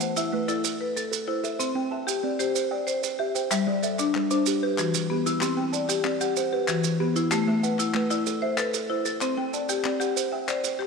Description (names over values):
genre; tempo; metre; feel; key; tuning
southern african traditional, mbira-style interlocking cycle; 126 BPM (dotted quarters); 12/8; straight; unclear; A4 = 441 Hz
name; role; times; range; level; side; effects
buzzing kalimba; arpeggios; 0.0-10.9 s; E3 to A5; -29 LUFS; right 11 dB; none
marimba with hard mallets; arpeggios; 0.0-10.9 s; E3 to G5; -26 LUFS; left 7 dB; none
maracas; percussion; 0.0-10.8 s; none; -32 LUFS; right 12 dB; none
group handclap; percussion; 3.5-10.9 s; none; -35 LUFS; left 6 dB; none
room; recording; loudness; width
wet plate reverb, RT60 2.3 s; 1960s-style stereo with parts hard left and right; -23 LUFS; side -4 dB against mid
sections
0.0-3.5 A section; 3.5-10.9 B section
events
none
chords
0.0 Am; 1.6 C; 3.5 G5; 4.5 Em; 5.4 C; 6.4 Em; 7.3 Am; 9.2 C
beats
0.17 0.64 1.12 | 1.60 2.08 2.55 3.03 | 3.51 3.98 4.46 4.93 | 5.41 5.89 6.36 6.84 | 7.31 7.79 8.27 8.74 | 9.22 9.69 10.17 10.64